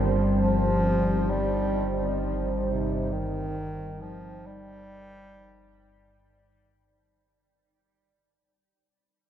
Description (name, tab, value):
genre	dark ambient drone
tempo	free time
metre	none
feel	none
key	unclear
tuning	A4 = 440 Hz
part	breathy bass clarinet	melody	0.0-6.3 s	C3 to G3	-30 LUFS	equal	ping-pong delay
part	deep dark ambient pad	sustained chords	0.0-6.7 s	G3 to C5	-28 LUFS	right 1 dB	chorus, built-in reverb
part	gamelan-type bossed gongs	arpeggios	0.0-4.2 s	none	barely audible	none	none
part	analog drone	drone	0.0-6.8 s	G1	-30 LUFS	equal	chorus, phaser
room	wet huge ambient reverb, RT60 9.2 s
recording	worn, warbling old tape, cassette tape, warbly pitch drift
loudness	-24 LUFS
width	side -10 dB against mid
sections	0.0-6.7 A section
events	fade-out 0.0-6.7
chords	0.0 Eb6/G